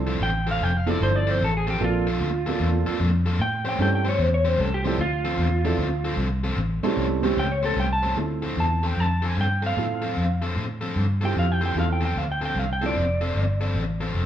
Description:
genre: electric blues shuffle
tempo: 151 BPM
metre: 4/4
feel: swing 67% on 8ths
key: D minor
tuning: A4 = 440 Hz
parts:
  - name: clear upright piano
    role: accompaniment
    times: 0.0-12.9 s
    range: F3 to A4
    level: -28 LUFS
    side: right 5 dB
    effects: none
  - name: vintage muted fingered electric bass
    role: bass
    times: 0.0-14.3 s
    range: F1 to A2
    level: -24 LUFS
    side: equal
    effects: none
  - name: overdriven electric guitar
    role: riff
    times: 0.1-14.2 s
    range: D3 to B#4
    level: -30 LUFS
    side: left 3 dB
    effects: spring reverb
  - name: electric guitar through a small old amp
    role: melody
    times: 0.2-14.0 s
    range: F4 to A5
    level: -26 LUFS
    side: right 1 dB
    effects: vibrato effect
room: moderate studio reverb, RT60 0.8 s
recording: band playing live in one room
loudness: -21 LUFS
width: side -10 dB against mid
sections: 0.0-8.2 A section; 8.2-14.3 B section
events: clean electric guitar solo 0.0-8.2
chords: 0.0 Dm7; 1.8 Bbmaj7; 3.4 A7#9; 5.0 Dm7; 6.6 A7#9; 8.2 Dm7

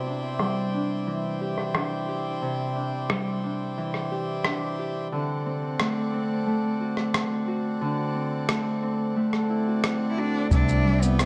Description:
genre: folktronica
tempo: 89 BPM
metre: 4/4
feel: straight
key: unclear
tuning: A4 = 438 Hz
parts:
  - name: hand-pumped harmonium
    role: sustained chords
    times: 0.0-11.3 s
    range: C4 to G5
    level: -34 LUFS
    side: equal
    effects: none
  - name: Celtic harp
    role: arpeggios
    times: 0.0-11.3 s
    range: C3 to G4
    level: -29 LUFS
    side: equal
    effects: low-pass filter, tape echo
  - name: electronic rim click and shaker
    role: drums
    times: 0.4-11.3 s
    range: none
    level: -31 LUFS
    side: equal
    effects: low-pass filter on perc, low-pass filter on snare, low-pass filter on room
  - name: clear cello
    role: melody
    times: 10.1-11.3 s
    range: B3 to E4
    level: -29 LUFS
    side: equal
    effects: none
  - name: fingered electric bass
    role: bass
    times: 10.5-11.3 s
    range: C2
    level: -24 LUFS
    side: equal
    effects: none
  - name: kick drum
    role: drums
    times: 10.5-10.6 s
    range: none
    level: -26 LUFS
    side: equal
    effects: none
room: moderate concert hall reverb, RT60 2.6 s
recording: dark, warm production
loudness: -27 LUFS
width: mono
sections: 0.0-10.5 A section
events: filter sweep on drum 0.0-10.5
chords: 0.0 Cadd9; 5.1 D7; 10.5 Cadd9

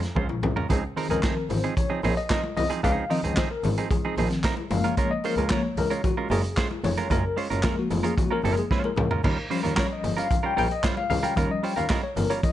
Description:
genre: disco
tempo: 112 BPM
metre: 4/4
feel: straight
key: Db major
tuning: A4 = 440 Hz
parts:
  - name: semi-hollow electric guitar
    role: accompaniment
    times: 0.0-12.5 s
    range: F3 to C5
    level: -30 LUFS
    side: right 6 dB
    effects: none
  - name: tine electric piano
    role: accompaniment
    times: 0.0-12.5 s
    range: Bb2 to G5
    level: -28 LUFS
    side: left 4 dB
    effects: medium tremolo
  - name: vintage drum kit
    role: drums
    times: 0.0-12.5 s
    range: crash cymbal, handclaps, hi-hat, kick drum, snare drum, toms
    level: -28 LUFS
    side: right 1 dB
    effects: none
  - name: bright double bass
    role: bass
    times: 0.2-12.2 s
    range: F1 to Eb2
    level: -28 LUFS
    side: equal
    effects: none
  - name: congas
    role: percussion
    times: 0.3-12.5 s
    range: none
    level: -33 LUFS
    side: left 6 dB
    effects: none
room: light reverb, studio ambience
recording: nothing above 10.5 kHz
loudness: -22 LUFS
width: side -12 dB against mid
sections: 0.7-12.5 A section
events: drum fill 0.2-0.7, 8.7-9.2; tine electric piano solo 0.7-12.5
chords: 0.0 Bbm7; 0.7 Dbmaj9; 4.7 Gbmaj9; 9.2 Eb9

